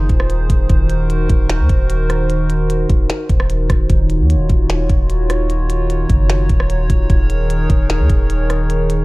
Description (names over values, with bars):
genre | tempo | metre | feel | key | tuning
hip hop, atmospheric cloud-rap | 150 BPM | 4/4 | half-time | Eb dorian | A4 = 440 Hz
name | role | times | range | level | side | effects
hollow soft pad | sustained chords | 0.0-9.0 s | Eb3 to Db5 | -21 LUFS | right 1 dB | chorus, sidechain pumping
long sustained 808-style bass | bass | 0.0-9.0 s | Eb1 to Eb2 | -16 LUFS | equal | none
glitchy drum kit | drums | 0.1-9.0 s | hi-hat, kick drum, rim click, snare drum | -16 LUFS | equal | none
room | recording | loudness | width
little or no reverb | none | -13 LUFS | side -22 dB against mid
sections
0.0-9.0 A section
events
none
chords
0.0 Ab6/Eb; 0.7 Ebm6; 3.9 Ebm7; 7.1 Eb7sus4